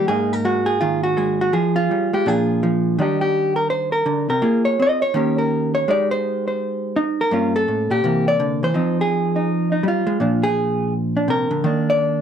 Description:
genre	solo jazz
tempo	166 BPM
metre	4/4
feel	swing 63% on 8ths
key	Eb major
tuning	A4 = 435 Hz
part	vintage hollow-body jazz guitar	solo	0.0-12.2 s	G2 to Eb5	-17 LUFS	equal	none
room	moderate studio reverb, RT60 0.5 s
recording	none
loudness	-17 LUFS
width	side -8 dB against mid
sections	0.0-3.0 A section; 3.0-12.2 B section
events	hollow-body jazz guitar solo 3.0-12.2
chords	0.1 Absus2; 1.5 Fm; 2.3 Bb7; 3.0 Ebmaj7; 4.4 Bb5; 5.1 Eb7; 5.9 Abmaj7; 7.3 Gm7b5; 8.0 C7; 8.8 Fm7; 10.2 Bb7; 11.7 Eb5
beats	| 0.09 0.45 0.81 1.17 | 1.53 1.90 2.26 2.62 | 2.98 3.34 3.70 4.06 | 4.42 4.79 5.15 5.51 | 5.87 6.23 6.59 6.95 | 7.32 7.68 8.04 8.40 | 8.76 9.12 9.48 9.84 | 10.21 10.57 10.93 11.29 | 11.65 12.01

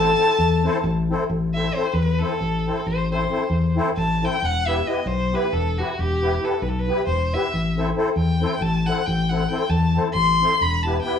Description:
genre	balkan folk, Balkan wedding band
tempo	270 BPM (eighths)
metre	7/8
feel	straight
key	A minor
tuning	A4 = 440 Hz
part	rich violin	melody	0.0-11.2 s	F#4 to C6	-24 LUFS	left 1 dB	none
part	dark clarinet	second line	0.0-0.8 s	A4	-22 LUFS	left 8 dB	none
part	musette accordion	accompaniment	0.0-11.2 s	B3 to C5	-26 LUFS	left 2 dB	none
part	fingered electric bass	bass	0.0-11.0 s	E1 to E2	-22 LUFS	left 1 dB	none
room	moderate stone room reverb, RT60 1.0 s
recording	band playing live in one room, studio ambience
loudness	-19 LUFS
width	side -8 dB against mid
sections	0.0-1.3 A section; 1.3-11.2 B section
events	violin solo 1.3-11.2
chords	0.0 Am; 4.4 Em; 7.5 Am; 10.6 Em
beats	0.20 0.42 0.64 0.86 1.09 | 1.31 1.53 1.76 1.98 2.20 2.43 2.65 | 2.87 3.10 3.32 3.54 3.76 3.99 4.21 | 4.43 4.66 4.88 5.10 5.32 5.54 5.77 | 5.99 6.21 6.43 6.65 6.87 7.09 7.32 | 7.54 7.76 7.98 8.20 8.42 8.64 8.86 | 9.07 9.29 9.51 9.73 9.95 10.17 10.39 | 10.61 10.82 11.04

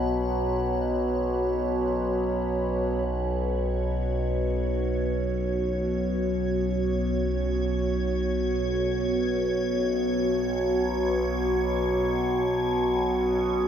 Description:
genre	dark ambient drone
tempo	free time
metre	none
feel	none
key	unclear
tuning	A4 = 440 Hz
part	dark analog pad	sustained chords	0.0-13.7 s	B3 to C#5	-27 LUFS	right 1 dB	chorus
part	overtone-sweeping drone	drone	0.0-13.7 s	B1 to B2	-27 LUFS	left 1 dB	chorus, built-in reverb, phaser
part	icy glass pad	texture	0.0-13.7 s	B4 to C#5	-38 LUFS	left 2 dB	chorus, built-in reverb, phaser
room	wet cathedral reverb, RT60 5.4 s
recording	none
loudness	-24 LUFS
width	side -8 dB against mid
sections	0.0-3.1 A section; 3.1-13.7 B section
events	none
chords	0.0 B5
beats	free time

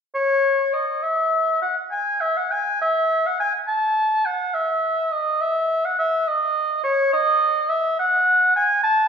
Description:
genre	classical, baroque-style fantasia for unaccompanied oboe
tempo	69 BPM (dotted quarters)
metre	12/8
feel	rubato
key	E major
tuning	A4 = 435 Hz
part	warm oboe	solo	0.1-9.1 s	C#5 to A5	-18 LUFS	equal	none
room	wet recital hall reverb, RT60 1.6 s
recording	recorded in a church or concert hall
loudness	-18 LUFS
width	side -6 dB against mid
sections	0.1-9.1 A section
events	none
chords	none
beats	| 0.14 1.04 1.92 2.81 | 3.68 4.55 5.41 6.27 | 7.12 7.97 8.82

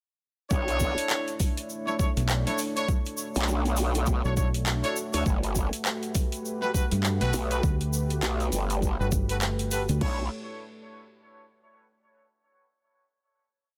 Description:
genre	glitch hop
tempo	101 BPM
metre	4/4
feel	swing 60% on 16ths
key	B minor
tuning	A4 = 440 Hz
part	dark analog pad	sustained chords	1.0-10.3 s	A3 to C#5	-37 LUFS	equal	chorus, sidechain pumping
part	bright horn section	stabs	0.5-10.2 s	D4 to C#5	-35 LUFS	equal	sidechain pumping, dub echo
part	growl bass	bass	0.5-10.3 s	G1 to D2	-30 LUFS	equal	chorus, tube saturation
part	electronic kick drum	drums	0.5-10.2 s	none	-29 LUFS	equal	overdrive
part	egg shaker	percussion	0.5-10.0 s	none	-40 LUFS	equal	none
part	dubstep drum kit	drums	0.7-10.2 s	crash cymbal, handclaps, hi-hat, snare drum	-34 LUFS	equal	overdrive
part	fingered electric bass	bass	2.2-10.0 s	G1 to G2	-29 LUFS	equal	tube saturation
room	digital ambience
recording	none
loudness	-27 LUFS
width	mono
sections	0.5-10.0 drop; 10.0-12.4 final chord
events	drop 0.5-10.0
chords	0.5 Bm11; 5.3 Gmaj9; 10.0 Bm11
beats	| 0.51 1.10 1.70 2.29 | 2.88 3.48 4.07 4.67 | 5.26 5.85 6.45 7.04 | 7.64 8.23 8.82 9.42 | 10.01

